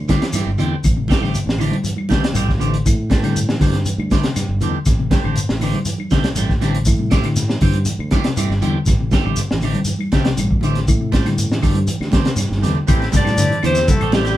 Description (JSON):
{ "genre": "afrobeat", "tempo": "120 BPM", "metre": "4/4", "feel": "straight", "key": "A minor", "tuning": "A4 = 439 Hz", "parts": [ { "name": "mellow electric guitar", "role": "arpeggios", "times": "0.0-14.3 s", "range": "A2 to E3", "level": "-24 LUFS", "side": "left 4 dB", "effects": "spring reverb" }, { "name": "fingered electric bass", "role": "bass", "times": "0.0-14.4 s", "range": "G1 to A2", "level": "-21 LUFS", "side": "equal", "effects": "none" }, { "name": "electric guitar at the edge of break-up", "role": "stabs", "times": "0.1-14.4 s", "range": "E3 to G4", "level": "-25 LUFS", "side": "right 6 dB", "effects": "phaser" }, { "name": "crunchy breakbeat drum kit", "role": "drums", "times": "0.1-14.4 s", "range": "hi-hat, kick drum, snare drum", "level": "-18 LUFS", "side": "equal", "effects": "none" }, { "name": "congas", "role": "percussion", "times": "0.1-14.3 s", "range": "none", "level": "-25 LUFS", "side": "right 1 dB", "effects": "none" }, { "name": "shekere", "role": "percussion", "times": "0.1-14.4 s", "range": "none", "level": "-25 LUFS", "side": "left 1 dB", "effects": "none" }, { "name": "claves", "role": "percussion", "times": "0.3-14.1 s", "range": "none", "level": "-36 LUFS", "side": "left 7 dB", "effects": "none" }, { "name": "overdriven combo organ", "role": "accompaniment", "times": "12.9-14.4 s", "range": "C4 to B4", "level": "-29 LUFS", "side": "left 3 dB", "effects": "spring reverb" }, { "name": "edgy alto saxophone", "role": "melody", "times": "13.2-14.4 s", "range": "G4 to D5", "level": "-20 LUFS", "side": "left 2 dB", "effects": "none" }, { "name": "bright trombone", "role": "second line", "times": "13.2-14.4 s", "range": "G3 to D4", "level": "-26 LUFS", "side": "right 2 dB", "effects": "none" } ], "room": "moderate studio reverb, RT60 0.5 s", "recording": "band playing live in one room", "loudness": "-15 LUFS", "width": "side -14 dB against mid", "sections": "0.0-12.9 A section; 12.9-14.4 B section", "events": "drum fill 12.5-12.9", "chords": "0.0 Am7" }